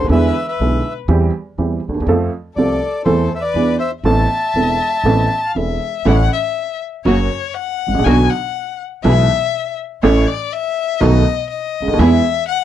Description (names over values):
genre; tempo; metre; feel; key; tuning
tango; 122 BPM; 4/4; rubato; A minor, A major from 6.1 s; A4 = 439 Hz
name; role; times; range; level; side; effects
bandoneon; melody; 0.0-5.5 s; C5 to A5; -19 LUFS; left 1 dB; none
rich violin; second line; 0.0-12.6 s; A4 to G#5; -21 LUFS; left 13 dB; none
clear upright piano; accompaniment; 0.0-12.2 s; E1 to A4; -16 LUFS; right 3 dB; none
upright bass; bass; 0.0-12.2 s; E1 to F2; -18 LUFS; equal; none
warm symphonic string section; stabs; 6.1-12.2 s; A3 to A4; -22 LUFS; equal; none
room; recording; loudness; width
little or no reverb; dry, close 1970s-style studio recording; -14 LUFS; side -11 dB against mid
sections
0.0-6.1 A section; 6.1-12.6 B section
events
violin solo 6.1-12.6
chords
0.1 E7; 1.1 C/E; 2.1 F; 3.1 Am/E; 3.5 E7; 4.0 Amadd9; 6.1 A; 7.1 F#; 8.1 Bm; 9.0 E/B; 10.0 A; 11.0 B7; 12.0 E